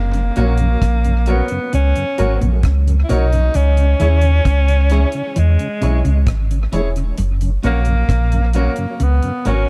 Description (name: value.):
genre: roots reggae.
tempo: 66 BPM.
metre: 4/4.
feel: straight.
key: F# mixolydian.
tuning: A4 = 440 Hz.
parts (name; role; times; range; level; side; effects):
breathy tenor saxophone; melody; 0.0-9.7 s; G#3 to E4; -24 LUFS; equal; tape echo.
mellow electric guitar; riff; 0.0-9.6 s; E2 to E3; -27 LUFS; equal; tube saturation, tremolo.
warm sub bass; bass; 0.0-9.7 s; E1 to E2; -17 LUFS; equal; none.
mellow tonewheel organ; accompaniment; 0.1-9.5 s; F#2 to C#4; -28 LUFS; equal; chorus vibrato, slow rotary speaker, dub echo.
deep reggae drum kit; drums; 0.1-9.7 s; hi-hat, kick drum, rim click; -24 LUFS; equal; dub echo.
clean electric guitar; accompaniment; 0.4-9.6 s; C#4 to C#5; -32 LUFS; equal; tape echo.
clear concert grand piano; stabs; 0.4-9.6 s; E4 to C#5; -29 LUFS; equal; none.
room: little or no reverb.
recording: dark, warm production.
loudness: -16 LUFS.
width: mono.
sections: 0.0-9.7 A section.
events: none.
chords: 0.0 F#; 3.5 C#m; 7.2 F#.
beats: 0.82 1.72 2.63 | 3.54 4.45 5.36 6.27 | 7.18 8.09 9.00.